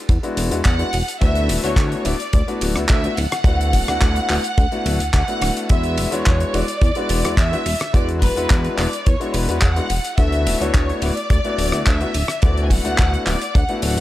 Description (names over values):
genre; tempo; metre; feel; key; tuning
nu-disco, nu disco; 107 BPM; 4/4; straight; unclear; A4 = 439 Hz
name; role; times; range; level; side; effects
chorused synth bass; bass; 0.1-14.0 s; D1 to E2; -21 LUFS; equal; none
damped 70s drum kit; drums; 0.1-14.0 s; handclaps, hi-hat, ride cymbal, rim click; -26 LUFS; equal; small room ambience
kick drum; drums; 0.1-13.7 s; none; -17 LUFS; equal; small room ambience
warm concert grand piano; accompaniment; 0.2-14.0 s; G#3 to F#4; -24 LUFS; left 3 dB; sidechain pumping
clear studio violin section; melody; 0.7-14.0 s; B4 to G#5; -24 LUFS; equal; analog delay
room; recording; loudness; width
small room reverb; dry, gritty hardware recording; -16 LUFS; side -15 dB against mid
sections
0.0-14.0 A section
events
none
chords
0.0 E7; 1.2 D6; 5.7 E7; 10.2 D6